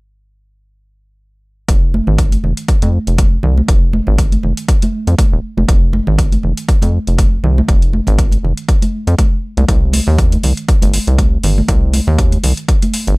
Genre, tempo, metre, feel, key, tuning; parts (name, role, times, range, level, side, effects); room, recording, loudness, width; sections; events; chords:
deep house; 120 BPM; 4/4; swing 55% on 16ths; F minor; A4 = 440 Hz
rubbery square bass; bass; 1.7-13.2 s; Eb1 to F2; -13 LUFS; equal; sidechain pumping
electronic hi-hat; drums; 1.7-13.2 s; -24 LUFS; left 1 dB; overdrive
electronic kick drum; drums; 1.7-12.8 s; -13 LUFS; equal
congas; percussion; 1.9-12.9 s; -21 LUFS; right 2 dB
little or no reverb; faint mains hum; -11 LUFS; side -26 dB against mid
1.7-13.2 A section